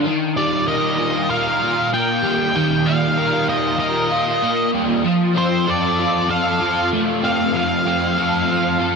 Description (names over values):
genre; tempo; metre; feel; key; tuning
rock; 96 BPM; 4/4; straight; unclear; A4 = 440 Hz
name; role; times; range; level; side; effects
crunchy overdriven guitar; riff; 0.0-9.0 s; Eb3 to Bb4; -18 LUFS; equal; ensemble chorus
octave-fuzz lead guitar; melody; 0.4-9.0 s; C5 to G5; -21 LUFS; equal; distortion, tape echo
room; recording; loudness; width
moderate huge ambient reverb, RT60 7.4 s; none; -16 LUFS; side -4 dB against mid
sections
0.0-9.0 A section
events
none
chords
0.1 Ebadd9; 5.1 F